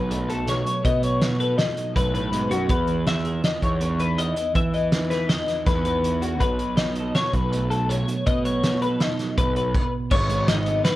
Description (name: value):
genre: math rock and midwest emo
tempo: 162 BPM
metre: 5/4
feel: straight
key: unclear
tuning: A4 = 440 Hz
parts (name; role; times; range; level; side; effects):
- twelve-string electric guitar; accompaniment; 0.0-11.0 s; E2 to A4; -28 LUFS; right 4 dB; none
- twelve-string electric guitar; arpeggios; 0.0-11.0 s; F#4 to E5; -25 LUFS; left 3 dB; analog chorus, plate reverb
- fuzz picked electric bass; bass; 0.0-10.8 s; G#1 to E3; -26 LUFS; equal; overdrive
- loose indie drum kit; drums; 0.1-10.9 s; crash cymbal, hi-hat, kick drum, snare drum; -25 LUFS; equal; none
room: light reverb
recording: worn, warbling old tape, cassette tape, warbly pitch drift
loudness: -20 LUFS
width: side -16 dB against mid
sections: 0.0-10.1 A section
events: none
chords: 0.0 B9; 2.7 Emaj7; 6.4 B9; 10.1 G#m